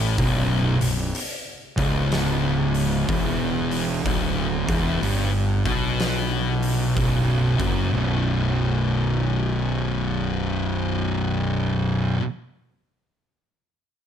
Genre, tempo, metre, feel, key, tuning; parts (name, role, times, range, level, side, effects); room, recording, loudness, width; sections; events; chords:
stoner and doom metal; 62 BPM; 4/4; swing 65% on 8ths; B minor; A4 = 440 Hz
thick fuzz guitar; riff; 0.0-12.2 s; B1 to B2; -25 LUFS; left 8 dB; distortion
thick fuzz guitar; riff; 0.0-12.2 s; B1 to B2; -25 LUFS; right 6 dB; distortion
fuzz fingered electric bass; bass; 0.0-12.1 s; B0 to B1; -27 LUFS; equal; overdrive
oversized low-tuned drum kit; drums; 0.2-7.8 s; hi-hat, kick drum, snare drum; -28 LUFS; equal
light reverb, small room reverb; -20 LUFS; side -8 dB against mid
0.0-7.9 A section; 7.9-11.8 B section
0.0 Bm; 7.9 B5